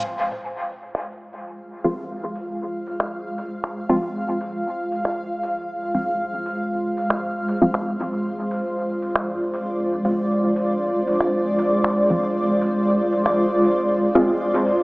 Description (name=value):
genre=dub techno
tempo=117 BPM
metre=4/4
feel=straight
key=F dorian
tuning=A4 = 439 Hz
part: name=granular cloud pad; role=sustained chords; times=1.4-14.8 s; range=Ab3 to F5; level=-21 LUFS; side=equal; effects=built-in reverb
part: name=lo-fi sampler-style drum kit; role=drums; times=0.3-14.8 s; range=finger snaps, hi-hat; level=-27 LUFS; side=equal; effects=overdrive, low-pass filter on hats, small room ambience, low-pass filter on snare, dub echo
part: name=filtered dub chord stab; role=stabs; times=1.8-14.2 s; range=F3 to F4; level=-23 LUFS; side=equal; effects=chorus, phaser, dub echo
room=wet echo chamber reverb, RT60 2.1 s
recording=small speaker sound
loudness=-20 LUFS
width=side -24 dB against mid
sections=0.0-14.8 A section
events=filter sweep on synth stab 0.0-14.8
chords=0.0 Fm